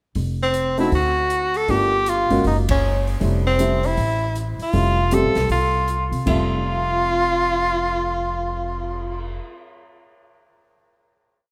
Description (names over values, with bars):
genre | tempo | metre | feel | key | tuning
jazz, small-group swing and bop | 157 BPM | 4/4 | swing 63% on 8ths | F major | A4 = 440 Hz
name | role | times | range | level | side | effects
open jazz drum kit | drums | 0.1-9.3 s | crash cymbal, cymbal swell, hi-hat, kick drum, ride cymbal, snare drum | -32 LUFS | equal | none
upright bass | bass | 0.2-9.4 s | F1 to C3 | -26 LUFS | equal | none
bright tenor saxophone | melody | 0.4-9.4 s | C4 to A4 | -23 LUFS | equal | analog delay
warm baby grand piano | accompaniment | 0.8-9.4 s | F2 to E5 | -28 LUFS | equal | subtle chorus
room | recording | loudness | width
wet plate reverb, RT60 1.7 s, small room reverb | dreamy mix soaked in reverb | -20 LUFS | mono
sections
0.2-6.3 A section; 6.3-9.3 final chord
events
band accent 2.6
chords
0.2 F; 0.9 D; 1.7 Gm7; 2.4 Gb5; 3.2 Fmaj9